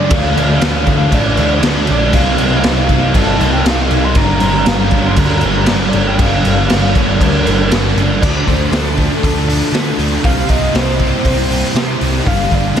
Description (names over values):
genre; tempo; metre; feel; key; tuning
rock, shoegaze and dream pop; 118 BPM; 4/4; straight; G minor; A4 = 440 Hz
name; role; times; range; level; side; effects
warm velvety synth lead; melody; 0.0-12.8 s; A4 to C6; -20 LUFS; equal; chorus, tape echo
cranked stack guitar; riff; 0.0-12.8 s; G2 to D4; -21 LUFS; equal; overdrive, wide subtle chorus
overdriven electric guitar; riff; 0.0-12.8 s; G2 to E4; -19 LUFS; right 6 dB; reverse reverb
thick fuzz guitar; riff; 0.0-12.8 s; G2 to D4; -19 LUFS; left 7 dB; distortion, ensemble chorus
growling picked electric bass; bass; 0.1-12.8 s; G1 to D3; -17 LUFS; equal; overdrive
raw garage drum kit; drums; 0.1-12.8 s; crash cymbal, hi-hat, kick drum, snare drum; -16 LUFS; equal; none
room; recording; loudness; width
moderate lush hall reverb, RT60 2.3 s; dreamy mix soaked in reverb; -11 LUFS; side -9 dB against mid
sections
0.0-8.2 A section; 8.2-12.8 B section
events
none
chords
0.1 Dm; 2.1 C7sus4; 4.2 Gm7; 8.2 Dm; 10.2 C5; 12.3 Gm